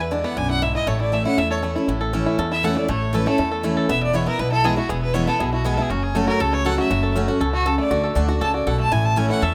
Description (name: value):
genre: bluegrass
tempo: 238 BPM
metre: 4/4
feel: straight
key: A major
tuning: A4 = 440 Hz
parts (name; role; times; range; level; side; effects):
- clear fiddle; melody; 0.0-9.5 s; F#4 to A5; -26 LUFS; equal; none
- picked steel-string acoustic guitar; accompaniment; 0.0-9.5 s; E2 to F#4; -26 LUFS; equal; none
- bluegrass banjo; arpeggios; 0.0-9.5 s; A3 to A4; -28 LUFS; equal; none
- upright bass; bass; 0.0-9.5 s; E1 to E2; -27 LUFS; equal; none
room: light reverb, studio ambience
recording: rough home demo mix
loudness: -21 LUFS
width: mono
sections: 0.0-1.9 A section; 1.9-9.5 B section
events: none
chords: 0.0 E7; 0.9 A; 3.9 E; 5.9 F#m; 7.9 D; 8.9 A